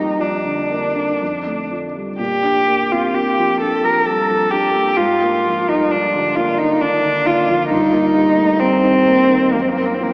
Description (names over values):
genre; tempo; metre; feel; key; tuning
classical, romantic duo for cello and grand piano; 57-68 BPM; 3/4; rubato; Bb major; A4 = 440 Hz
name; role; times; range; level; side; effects
rich cello; melody; 0.0-10.1 s; Bb3 to Bb4; -15 LUFS; equal; none
dark grand piano; accompaniment; 0.0-10.1 s; F2 to D4; -21 LUFS; equal; none
room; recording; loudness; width
wet cathedral reverb, RT60 4.9 s; in a vast, echoing space, small speaker sound; -14 LUFS; side -33 dB against mid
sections
0.0-10.1 A section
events
none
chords
0.0 Bb/F; 1.2 F; 2.2 Bb; 5.0 Bb7/Ab; 7.7 Eb/G; 9.5 Gb7